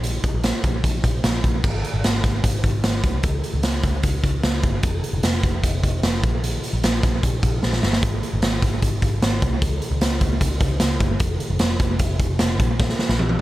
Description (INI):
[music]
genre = jangly indie pop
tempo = 150 BPM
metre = 4/4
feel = straight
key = unclear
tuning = A4 = 440 Hz
[part]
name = vintage muted picked electric bass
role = bass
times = 0.0-13.4 s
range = F1 to Db2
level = -23 LUFS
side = equal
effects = none
[part]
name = raw garage drum kit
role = drums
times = 0.0-13.4 s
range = crash cymbal, hi-hat, kick drum, snare drum, toms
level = -20 LUFS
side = equal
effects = dub echo
[sound]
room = little or no reverb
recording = echo-heavy mix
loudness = -18 LUFS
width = side -16 dB against mid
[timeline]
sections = 0.0-1.6 A section; 1.6-13.4 B section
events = drum fill 7.6-8.0, 12.8-13.4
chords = none